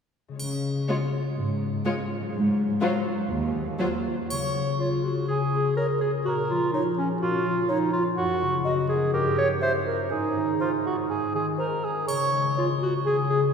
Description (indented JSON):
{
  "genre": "cinematic, playful, whimsical film cue",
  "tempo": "124 BPM",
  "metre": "4/4",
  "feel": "straight",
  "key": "Db major",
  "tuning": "A4 = 440 Hz",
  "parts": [
    { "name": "concert harp", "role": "arpeggios", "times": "0.3-13.5 s", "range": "Gb2 to Db5", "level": "-29 LUFS", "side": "left 5 dB", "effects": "none" },
    { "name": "dark studio cello section", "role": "bass", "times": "0.4-3.7 s", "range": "Eb2 to Db3", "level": "-28 LUFS", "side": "equal", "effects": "none" },
    { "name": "triangle", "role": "percussion", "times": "0.4-1.3, 4.3-5.2, 12.1-13.0 s", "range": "none", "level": "-39 LUFS", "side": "right 2 dB", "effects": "none" },
    { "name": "warm studio violin section", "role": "melody", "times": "0.9-3.9 s", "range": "C5 to Db5", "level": "-38 LUFS", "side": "left 3 dB", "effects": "none" },
    { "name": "dark studio violin section", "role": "second line", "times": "0.9-3.9 s", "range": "F4", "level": "-34 LUFS", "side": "left 2 dB", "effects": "none" },
    { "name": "rich studio viola section", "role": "accompaniment", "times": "0.9-3.9 s", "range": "Gb3 to Ab3", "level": "-34 LUFS", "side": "right 1 dB", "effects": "none" },
    { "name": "mellow cor anglais", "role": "second line", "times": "4.3-13.5 s", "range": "F4 to Db5", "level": "-28 LUFS", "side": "right 2 dB", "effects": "none" },
    { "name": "mellow hollow silver concert flute", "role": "second line", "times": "4.8-12.7 s", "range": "C5 to E5", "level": "-35 LUFS", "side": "right 3 dB", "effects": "none" },
    { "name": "warm clarinet", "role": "second line", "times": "4.8-13.4 s", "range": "Db4 to Db5", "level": "-26 LUFS", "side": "right 1 dB", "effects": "none" }
  ],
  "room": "wet cathedral reverb, RT60 4.4 s",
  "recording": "heard from further back in the room",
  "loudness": "-23 LUFS",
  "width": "side -6 dB against mid",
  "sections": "0.4-4.3 A section; 4.3-13.5 B section",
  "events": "none",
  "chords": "0.4 Db; 2.3 Ab6; 4.3 Db; 6.3 Bbm; 8.2 Ebm7/Gb; 9.1 Gdim7; 10.1 Ab5; 12.1 Db5"
}